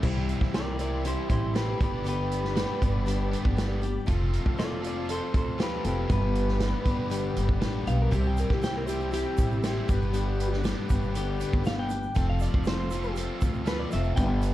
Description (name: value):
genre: folk rock and heartland rock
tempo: 119 BPM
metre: 4/4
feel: straight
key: G major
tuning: A4 = 440 Hz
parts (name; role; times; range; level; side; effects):
- picked plugged-in swing-style acoustic guitar; accompaniment; 0.0-14.5 s; G2 to B4; -34 LUFS; left 6 dB; plate reverb
- musette accordion; sustained chords; 0.0-14.5 s; G4 to E6; -44 LUFS; right 4 dB; plate reverb
- biting overdriven guitar; riff; 0.0-14.5 s; C3 to C5; -36 LUFS; right 1 dB; none
- upright bass; bass; 0.0-14.5 s; F1 to D2; -29 LUFS; equal; none
- vintage drum kit; drums; 0.0-14.5 s; crash cymbal, hi-hat, kick drum, snare drum; -29 LUFS; equal; none
- electric guitar through a small old amp; melody; 0.5-14.4 s; E4 to G5; -34 LUFS; equal; slapback echo, plate reverb
- tube shaker; percussion; 8.1-14.5 s; none; -54 LUFS; right 12 dB; none
room: little or no reverb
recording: dark, warm production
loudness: -25 LUFS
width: side -14 dB against mid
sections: 0.0-14.5 A section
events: clean electric guitar solo 0.0-14.5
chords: 0.0 C; 1.8 G; 4.1 F; 6.1 G; 8.1 C; 9.9 G; 12.2 F